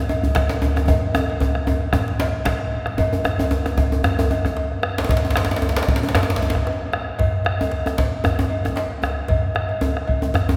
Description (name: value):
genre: west african traditional, West African drum ensemble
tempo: 114 BPM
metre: 4/4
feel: swing 56% on 16ths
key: none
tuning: none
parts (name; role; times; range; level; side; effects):
- cowbell; percussion; 0.1-10.2 s; none; -31 LUFS; equal; none
- djembe; percussion; 0.1-10.5 s; none; -28 LUFS; equal; none
- djembe; percussion; 0.1-10.6 s; none; -25 LUFS; equal; none
- bombo; percussion; 0.4-10.6 s; none; -25 LUFS; equal; none
room: wet church reverb, RT60 3.3 s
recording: recorded in a church or concert hall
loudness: -21 LUFS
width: mono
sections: 0.0-3.0 A section; 3.0-10.6 B section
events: drum fill 0.9-3.0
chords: none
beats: 0.36 | 0.89 1.41 1.94 2.46 | 2.99 3.52 4.04 4.57 | 5.09 5.62 6.14 6.67 | 7.19 7.72 8.24 8.77 | 9.29 9.82 10.34